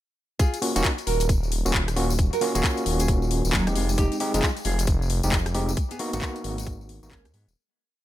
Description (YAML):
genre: UK garage, two-step garage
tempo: 134 BPM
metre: 4/4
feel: swing 62% on 16ths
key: Eb minor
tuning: A4 = 441 Hz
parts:
  - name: nylon-string guitar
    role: melody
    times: 0.4-7.5 s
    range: Gb3 to Bb4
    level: -30 LUFS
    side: right 3 dB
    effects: ping-pong delay
  - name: electronic kick drum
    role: drums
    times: 0.4-7.2 s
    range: none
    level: -24 LUFS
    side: equal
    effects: none
  - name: house drum kit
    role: drums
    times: 0.4-7.4 s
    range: handclaps, hi-hat, rim click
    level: -29 LUFS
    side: left 2 dB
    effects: overdrive
  - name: tambourine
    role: percussion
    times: 0.4-7.5 s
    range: none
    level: -36 LUFS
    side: left 5 dB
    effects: none
  - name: overdriven tine electric piano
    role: stabs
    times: 0.6-7.1 s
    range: Ab3 to Ab4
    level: -28 LUFS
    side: equal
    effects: fast tremolo, ping-pong delay
  - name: dark detuned saw bass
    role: bass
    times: 0.8-7.6 s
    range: Eb1 to Ab2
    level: -26 LUFS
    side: equal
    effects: none
room: digital ambience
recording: none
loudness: -22 LUFS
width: side -14 dB against mid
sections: 0.4-7.6 drop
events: drop 0.4-7.6; fade-out 5.2-7.6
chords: 0.4 Ebm9; 3.8 Fm9; 5.8 Abm9